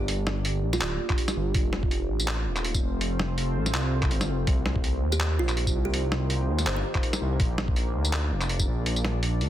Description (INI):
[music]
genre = half-time drum and bass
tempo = 164 BPM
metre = 4/4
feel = swing 55% on 16ths, half-time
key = unclear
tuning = A4 = 440 Hz
[part]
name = deep dark ambient pad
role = sustained chords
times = 0.0-9.5 s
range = A3 to D5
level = -34 LUFS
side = left 1 dB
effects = chorus, built-in reverb, sidechain pumping
[part]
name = dark detuned saw bass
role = bass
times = 0.0-9.5 s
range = D1 to Eb2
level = -27 LUFS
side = equal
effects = tube saturation
[part]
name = boom bap sampler-style drum kit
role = drums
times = 0.1-9.5 s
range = handclaps, hi-hat, snare drum, tambourine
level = -30 LUFS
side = equal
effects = soft clipping on snare
[part]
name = kalimba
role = melody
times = 0.7-1.0, 5.1-6.8 s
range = F4 to C5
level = -35 LUFS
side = right 5 dB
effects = dub echo
[part]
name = electronic kick drum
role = drums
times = 1.1-8.7 s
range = none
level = -27 LUFS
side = equal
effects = none
[sound]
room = digital ambience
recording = dense, heavily limited modern master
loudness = -24 LUFS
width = side -12 dB against mid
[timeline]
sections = 0.0-9.5 A section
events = none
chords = 0.0 Gm; 1.5 F; 4.5 Cm7; 7.4 Bb